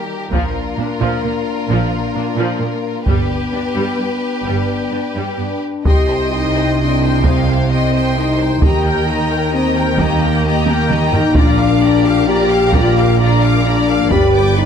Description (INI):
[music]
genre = cinematic, epic orchestral film score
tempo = 131 BPM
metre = 3/4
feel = straight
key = C minor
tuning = A4 = 440 Hz
[part]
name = warm symphonic violin section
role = melody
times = 0.0-14.7 s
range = F4 to F5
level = -25 LUFS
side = left 4 dB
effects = none
[part]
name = clear symphonic violin section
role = second line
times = 0.0-14.7 s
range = F4 to D6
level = -24 LUFS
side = left 1 dB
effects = none
[part]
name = mellow French horn section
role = sustained chords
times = 0.0-14.7 s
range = G3 to G4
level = -18 LUFS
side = left 4 dB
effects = none
[part]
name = warm studio viola section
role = accompaniment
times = 0.3-14.7 s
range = F3 to G5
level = -23 LUFS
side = equal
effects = none
[part]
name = rich symphonic cello section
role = bass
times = 0.3-14.7 s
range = G2 to Eb3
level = -21 LUFS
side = right 3 dB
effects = none
[part]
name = rich symphonic double bass section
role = bass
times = 0.3-14.7 s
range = G1 to Eb2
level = -21 LUFS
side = right 4 dB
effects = none
[part]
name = taiko ensemble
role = drums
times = 0.3-14.5 s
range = none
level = -18 LUFS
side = equal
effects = none
[part]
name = mellow tuba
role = bass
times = 5.9-14.7 s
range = G1 to Eb2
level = -22 LUFS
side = right 4 dB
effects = none
[sound]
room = moderate recital hall reverb, RT60 1.4 s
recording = none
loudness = -13 LUFS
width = side -7 dB against mid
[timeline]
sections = 0.0-5.9 A section; 5.9-14.7 B section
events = build-up 0.0-5.9; drum fill 10.7-11.4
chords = 0.3 Bb; 3.1 G; 5.9 Cm; 8.6 Eb; 11.4 Bb; 14.1 G